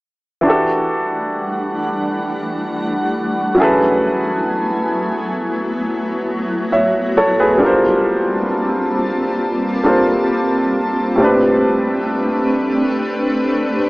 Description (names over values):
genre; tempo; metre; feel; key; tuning
R&B; 67 BPM; 4/4; straight; unclear; A4 = 445 Hz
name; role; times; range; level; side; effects
warm grand piano; accompaniment; 0.4-13.9 s; A2 to E5; -16 LUFS; equal; none
granular cloud pad; sustained chords; 0.8-13.9 s; E3 to A5; -19 LUFS; equal; built-in reverb
room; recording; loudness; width
moderate lush hall reverb, RT60 2.5 s; small speaker sound; -15 LUFS; side -22 dB against mid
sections
0.4-13.9 A section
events
none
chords
0.4 Em11; 3.6 F#m11; 7.6 Gm11; 11.2 Am11